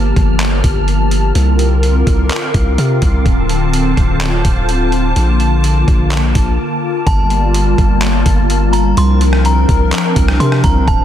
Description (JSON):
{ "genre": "hip hop, atmospheric cloud-rap", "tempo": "126 BPM", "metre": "4/4", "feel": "half-time", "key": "G minor", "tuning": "A4 = 440 Hz", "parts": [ { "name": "hollow soft pad", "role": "sustained chords", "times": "0.0-11.0 s", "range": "D3 to A5", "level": "-16 LUFS", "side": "left 1 dB", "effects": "ensemble chorus, sidechain pumping" }, { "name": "long sustained 808-style bass", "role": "bass", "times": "0.0-11.0 s", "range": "D1 to C3", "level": "-14 LUFS", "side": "equal", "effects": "none" }, { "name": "wind-like tuned noise texture", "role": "texture", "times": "0.0-11.0 s", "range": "D4 to F6", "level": "-26 LUFS", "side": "equal", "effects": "built-in reverb" }, { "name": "trip hop sampler-style drum kit", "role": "drums", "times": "0.2-11.0 s", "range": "handclaps, hi-hat, kick drum, rim click", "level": "-16 LUFS", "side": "equal", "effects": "soft clipping on snare" }, { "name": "delicate synth tine bell", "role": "melody", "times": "7.1-11.0 s", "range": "A5 to C6", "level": "-20 LUFS", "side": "equal", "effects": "chorus, phaser, low-pass filter, ping-pong delay" } ], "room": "little or no reverb", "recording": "dense, heavily limited modern master", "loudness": "-11 LUFS", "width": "side -10 dB against mid", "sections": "0.0-7.1 A section; 7.1-11.0 B section", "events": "break 6.6-7.1", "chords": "0.0 Gm9; 1.4 C9sus4; 3.3 Dm7; 5.2 Bbmaj7; 7.1 Gm9; 9.0 C9sus4" }